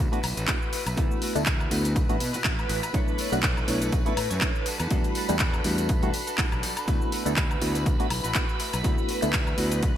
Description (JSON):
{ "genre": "filtered disco house", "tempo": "122 BPM", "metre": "4/4", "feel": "swing 56% on 16ths", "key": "D major", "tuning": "A4 = 440 Hz", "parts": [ { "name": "reed electric piano", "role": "accompaniment", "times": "0.0-9.9 s", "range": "G3 to C#5", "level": "-30 LUFS", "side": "left 1 dB", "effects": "phaser, sidechain pumping" }, { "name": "phased string machine", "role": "sustained chords", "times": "0.2-10.0 s", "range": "B4 to B5", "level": "-34 LUFS", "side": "equal", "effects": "ensemble chorus, phaser, sidechain pumping" }, { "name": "direct-recorded clean electric guitar", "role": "riff", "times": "0.0-10.0 s", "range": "G3 to C#5", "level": "-36 LUFS", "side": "right 2 dB", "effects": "analog chorus, sidechain pumping" }, { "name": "fuzz fingered electric bass", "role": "bass", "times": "0.0-9.9 s", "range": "E1 to B2", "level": "-31 LUFS", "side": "equal", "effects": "overdrive, sidechain pumping" }, { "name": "impact", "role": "sound effects", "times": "0.0-1.0 s", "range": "none", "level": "barely audible", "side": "none", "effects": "none" }, { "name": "house drum kit", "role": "drums", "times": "0.1-9.9 s", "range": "handclaps, hi-hat, shaker, woodblock", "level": "-30 LUFS", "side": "left 1 dB", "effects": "sidechain pumping on hats, sidechain pumping on perc, sidechain pumping on cymbals, gated reverb" }, { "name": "tambourine", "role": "percussion", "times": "0.2-9.9 s", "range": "none", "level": "-40 LUFS", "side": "left 1 dB", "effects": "sidechain pumping on perc" }, { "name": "electronic kick drum", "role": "drums", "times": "0.5-9.9 s", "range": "none", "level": "-26 LUFS", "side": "equal", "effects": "none" } ], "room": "light reverb, digital ambience", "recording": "bright 1980s-style digital production", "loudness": "-23 LUFS", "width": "side -11 dB against mid", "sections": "0.0-10.0 A section", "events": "impact 0.0-1.0", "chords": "0.0 D69; 2.9 Bm11; 4.7 Em11; 6.9 D69" }